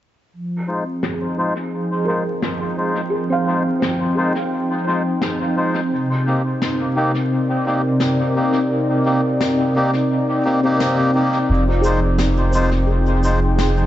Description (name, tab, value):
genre	ambient dub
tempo	86 BPM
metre	4/4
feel	swing 56% on 16ths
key	F dorian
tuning	A4 = 439 Hz
part	warm analog pad	sustained chords	0.3-13.9 s	C3 to G5	-19 LUFS	equal	chorus, tremolo
part	melodica	stabs	0.7-13.4 s	Ab3 to C5	-22 LUFS	left 1 dB	low-pass filter, dub echo
part	snare drum and shaker	drums	1.0-13.7 s	none	-28 LUFS	left 2 dB	low-pass filter on snare, low-pass filter on perc, low-pass filter on room, dub echo
part	felt-muted upright piano	arpeggios	2.0-6.0, 10.6-13.9 s	C4 to F5	-26 LUFS	right 1 dB	low-pass filter, tape echo
part	soft dub sub bass	bass	11.5-13.9 s	F1	-18 LUFS	equal	none
room	light reverb, studio reverb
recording	echo-heavy mix, vinyl crackle, nothing above 7.9 kHz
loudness	-16 LUFS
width	side -13 dB against mid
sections	0.3-13.9 A section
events	filter sweep on drum 0.3-13.9; filter sweep on analog synth pad 0.3-13.9; filter sweep on melodica 0.3-13.9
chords	0.3 Fm7; 5.9 Cm7; 11.5 Fm7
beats	| 0.33 1.03 1.73 2.43 | 3.12 3.82 4.52 5.22 | 5.92 6.61 7.31 8.01 | 8.71 9.40 10.10 10.80 | 11.50 12.19 12.89 13.59